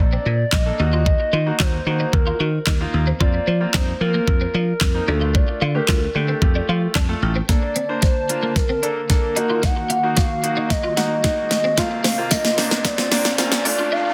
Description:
dance-pop; 112 BPM; 4/4; straight; Bb major; A4 = 439 Hz
hollow clarinet-like synth lead; melody; 0.0-14.1 s; A4 to Gb5; -26 LUFS; equal; chorus, tape echo
bright concert grand piano; accompaniment; 0.0-14.1 s; A3 to A5; -30 LUFS; equal; sidechain pumping
twelve-string electric guitar; riff; 0.0-14.1 s; Bb3 to Gb4; -31 LUFS; equal; ensemble chorus
dry thumbed slap bass; bass; 0.0-7.4 s; A1 to F3; -23 LUFS; equal; sidechain pumping
pop drum kit; drums; 0.5-13.8 s; handclaps, hi-hat, kick drum, snare drum; -21 LUFS; equal
airy breathy pad; sustained chords; 7.5-14.1 s; C3 to A5; -33 LUFS; equal; chorus, sidechain pumping
riser; sound effects; 9.8-14.1 s; -34 LUFS; equal
tambourine; percussion; 12.3-13.5 s; -31 LUFS; equal
light reverb, digital ambience; dense, heavily limited modern master, high-pass filter; -19 LUFS; mono
0.0-7.5 A section; 7.5-14.1 B section
grand piano fill 6.7-7.5; build-up 7.5-14.1; drum fill 7.5-13.9; filter sweep 7.5-14.1
0.0 Bbmaj7; 0.8 Ebm; 3.2 Fsus4; 5.1 Dm; 6.4 Fadd9; 7.5 Bbmaj7; 9.4 Ebm; 11.8 Fsus4

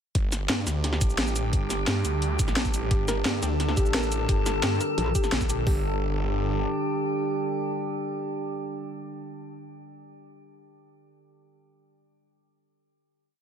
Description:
dark technical drum and bass; 174 BPM; 4/4; straight; G minor; A4 = 444 Hz
metallic inharmonic drone; sustained chords; 0.7-9.2 s; D3 to A4; -30 LUFS; equal; chorus, built-in reverb, sidechain pumping
snarling distorted saw bass; bass; 0.1-6.7 s; G1 to G2; -28 LUFS; equal; distortion, tube saturation, sidechain pumping
drum and bass drum kit; drums; 0.1-5.7 s; hi-hat, kick drum; -26 LUFS; equal; overdrive
drum and bass drum kit; drums; 0.1-5.6 s; cabasa, hi-hat, snare drum; -28 LUFS; equal
soft round pluck; arpeggios; 2.9-5.8 s; G4 to Bb4; -33 LUFS; left 3 dB; chorus, sidechain pumping, ping-pong delay
metallic wobble bass; bass; 5.0-5.1 s; Bb1; -25 LUFS; equal; chorus
light reverb, digital ambience; -24 LUFS; side -8 dB against mid
0.1-5.7 drop; 5.7-8.4 final chord
drop 0.1-5.7
0.1 G5

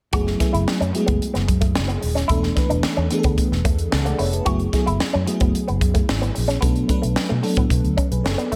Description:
polished 1980s jazz-funk pop; 111 BPM; 4/4; straight; F# minor; A4 = 440 Hz
FM electric piano with soft pad layer; accompaniment; 0.1-8.6 s; E3 to A5; -26 LUFS; equal; tremolo, analog chorus
electric guitar with an envelope filter; riff; 0.1-8.6 s; A3 to F#4; -29 LUFS; equal; subtle chorus
vintage muted fingered electric bass; bass; 0.1-8.6 s; D#1 to B2; -25 LUFS; equal
crisp fusion drum kit; drums; 0.1-8.6 s; hi-hat, kick drum, snare drum; -24 LUFS; equal; gated reverb
studio reverb; -20 LUFS; mono
0.1-8.6 A section
0.1 F#m11; 2.3 E7sus4; 4.5 F#m11; 6.6 Bm7

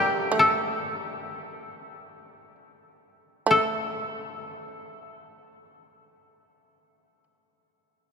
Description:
japanese traditional, Japanese chamber music; 32-46 BPM; 2/4; rubato; A4 = 440 Hz
koto; melody; 0.0-7.3 s; G4 to D5; -24 LUFS; left 2 dB
shamisen; second line; 0.0-7.2 s; G3 to A3; -30 LUFS; right 3 dB
wet cathedral reverb, RT60 4.6 s; minimal, uncompressed stereo recording; -23 LUFS; side -6 dB against mid
0.0-3.5 A section; 3.5-7.1 B section
slowing down 0.0-3.5

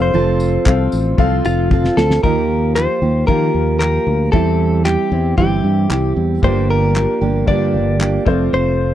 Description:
acoustic pop; 114 BPM; 4/4; straight; A4 = 440 Hz
direct-recorded clean electric guitar; melody; 0.0-8.9 s; F4 to D5; -19 LUFS; left 3 dB
fingerpicked steel-string acoustic guitar; accompaniment; 0.0-8.9 s; G2 to A4; -19 LUFS; right 7 dB
warm upright piano; accompaniment; 0.0-8.9 s; A3 to F5; -26 LUFS; left 10 dB
fingered electric bass; bass; 0.0-8.9 s; F1 to Eb3; -17 LUFS; left 1 dB
cloth-damped thuddy drum kit; drums; 0.4-8.4 s; handclaps, kick drum, snare drum, tambourine; -17 LUFS; left 1 dB
little or no reverb; dry, close 1970s-style studio recording; -13 LUFS; side -12 dB against mid
0.0-2.2 A section; 2.2-8.9 B section
drum fill 1.7-2.2
0.0 F; 2.2 Ebadd9; 4.3 C/E; 6.4 Gm7; 8.3 F

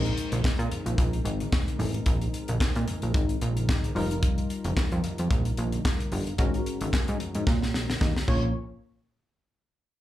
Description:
early-eighties boogie funk; 111 BPM; 4/4; swing 56% on 16ths; Bb minor; A4 = 439 Hz
funky polysynth comp; accompaniment; 0.0-8.5 s; G3 to Db5; -34 LUFS; left 3 dB; chorus, slapback echo
plucky analog bass; bass; 0.0-8.5 s; F1 to Bb2; -28 LUFS; equal
tight funk drum kit; drums; 0.1-8.4 s; crash cymbal, handclaps, hi-hat, kick drum, snare drum; -27 LUFS; equal
congas; percussion; 0.2-8.5 s; -37 LUFS; right 1 dB
little or no reverb; live gig heard through the venue's PA, club reverb; -24 LUFS; side -14 dB against mid
0.0-8.6 A section; 8.6-10.0 B section
drum fill 7.5-8.6
0.0 Bb9sus4; 4.0 F9sus4; 6.4 Ab9sus4; 8.3 Bbm; 8.6 N.C.

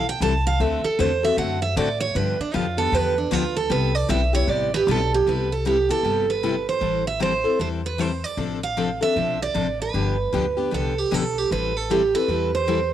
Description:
acoustic string swing (jazz manouche); 154 BPM; 4/4; swing 62% on 8ths; C major; A4 = 441 Hz
picked steel-string acoustic guitar; melody; 0.0-12.9 s; D4 to A5; -22 LUFS; right 5 dB; cassette tape
picked steel-string acoustic guitar; accompaniment; 0.0-12.8 s; C3 to A4; -25 LUFS; left 6 dB; cassette tape
upright bass; bass; 0.0-12.9 s; G1 to A2; -27 LUFS; left 1 dB
light reverb, studio ambience; home recording on cassette; -20 LUFS; side -11 dB against mid
0.0-5.3 A section; 5.3-12.9 B section
steel-string acoustic guitar solo 0.0-5.3
0.0 Am7; 0.6 D7; 2.1 G7; 3.7 Cmaj7; 6.8 Am7; 8.4 Dm7/A; 9.9 G7; 11.5 Am7

